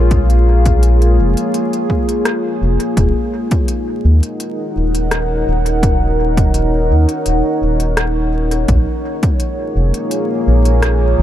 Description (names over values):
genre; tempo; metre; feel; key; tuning
ambient dub; 84 BPM; 4/4; straight; Eb minor; A4 = 440 Hz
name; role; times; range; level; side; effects
deep dark ambient pad; sustained chords; 0.0-11.2 s; Bb3 to Gb5; -17 LUFS; equal; chorus, built-in reverb
round analog bass; bass; 0.0-11.2 s; Eb1 to Eb2; -13 LUFS; equal; none
electronic kick drum; drums; 0.1-9.4 s; none; -16 LUFS; equal; overdrive
organic electronic drum kit; drums; 0.1-11.0 s; hi-hat, rim click; -24 LUFS; left 1 dB; dub echo
room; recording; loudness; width
light reverb, digital ambience; vinyl crackle; -13 LUFS; side -12 dB against mid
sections
0.0-11.2 A section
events
none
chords
0.0 Bbm7; 3.0 Ebm7; 8.7 Bbm7